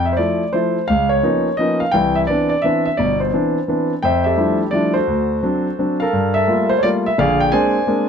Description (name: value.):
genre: jazz.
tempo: 172 BPM.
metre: 3/4.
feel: swing 65% on 8ths.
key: C major, F major from 4.0 s.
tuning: A4 = 440 Hz.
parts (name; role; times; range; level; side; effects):
dark concert grand piano; solo; 0.0-8.1 s; G1 to Ab5; -15 LUFS; equal; none.
room: light reverb.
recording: close, detailed microphones.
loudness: -15 LUFS.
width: side -7 dB against mid.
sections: 0.0-4.0 A section; 4.0-8.1 B section.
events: none.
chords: 0.0 Fmaj7; 0.9 Db13; 1.9 Cmaj9; 4.0 Fmaj13; 5.1 D7; 6.1 Gm9; 7.2 Bb9.